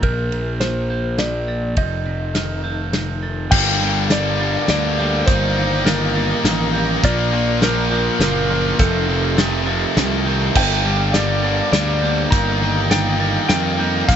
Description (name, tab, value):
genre	post-rock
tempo	102 BPM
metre	3/4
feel	straight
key	G minor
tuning	A4 = 444 Hz
part	clean lap steel guitar	melody	0.0-14.2 s	G4 to Bb5	-24 LUFS	left 1 dB	analog delay
part	warm studio string section	sustained chords	0.0-14.2 s	F3 to Bb5	-32 LUFS	left 1 dB	none
part	clean electric guitar	arpeggios	0.0-14.2 s	F2 to D4	-27 LUFS	left 2 dB	analog delay
part	glockenspiel with rubber mallets	arpeggios	0.0-14.2 s	F6 to A6	-28 LUFS	right 10 dB	analog delay
part	fuzz picked electric bass	bass	0.0-14.2 s	F1 to F2	-22 LUFS	equal	overdrive
part	loose indie drum kit	drums	0.0-14.2 s	crash cymbal, hi-hat, kick drum, ride cymbal, snare drum	-18 LUFS	equal	none
part	raw garage guitar	riff	3.5-14.2 s	F2 to Eb4	-24 LUFS	right 14 dB	overdrive
part	tight distorted guitar	riff	3.5-14.2 s	F2 to Eb4	-23 LUFS	left 13 dB	distortion
room	moderate booth ambience, RT60 0.3 s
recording	nothing above 7.9 kHz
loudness	-16 LUFS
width	side -9 dB against mid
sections	0.0-3.5 A section; 3.5-14.2 B section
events	none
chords	0.0 Bb; 1.8 F7; 3.5 Gmadd9; 5.3 Eb/G; 7.0 Bb; 8.8 F7; 10.6 Gmadd9; 12.3 Eb/G